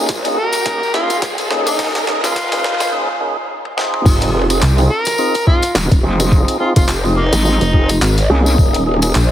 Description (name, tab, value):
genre	glitch hop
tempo	106 BPM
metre	4/4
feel	swing 56% on 16ths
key	unclear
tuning	A4 = 441 Hz
part	tonewheel organ	stabs	0.0-9.2 s	Bb3 to Ab4	-20 LUFS	equal	slow rotary speaker, sidechain pumping, tape echo
part	growl bass	bass	0.0-9.3 s	Eb1 to Db2	-16 LUFS	equal	chorus, high-pass filter
part	riser	sound effects	0.0-2.9 s	none	-24 LUFS	right 1 dB	none
part	boom bap sampler-style drum kit	drums	0.1-9.3 s	crash cymbal, handclaps, hi-hat, rim click, snare drum, toms	-22 LUFS	equal	high-pass filter on hats, high-pass filter on snare, high-pass filter on toms, high-pass filter on cymbals, high-pass filter on room
part	electronic kick drum	drums	0.1-8.7 s	none	-13 LUFS	equal	none
part	tambourine	percussion	0.1-9.3 s	none	-26 LUFS	left 3 dB	none
part	overdriven harmonica	melody	0.4-8.0 s	Bb3 to Bb4	-20 LUFS	equal	tape echo
part	vowel-sweep wobble bass	bass	5.7-8.6 s	Eb1 to C2	-14 LUFS	equal	chorus
room	moderate lush hall reverb, RT60 2.0 s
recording	heavily compressed radio sound, high-pass filter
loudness	-13 LUFS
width	side -12 dB against mid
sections	0.0-4.1 A section; 4.1-9.3 B section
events	build-up 0.0-4.1; drum fill 0.0-2.9, 3.6-4.1; riser 0.0-2.9; break 2.9-4.1; drop 4.1-9.3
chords	0.0 Eb7sus4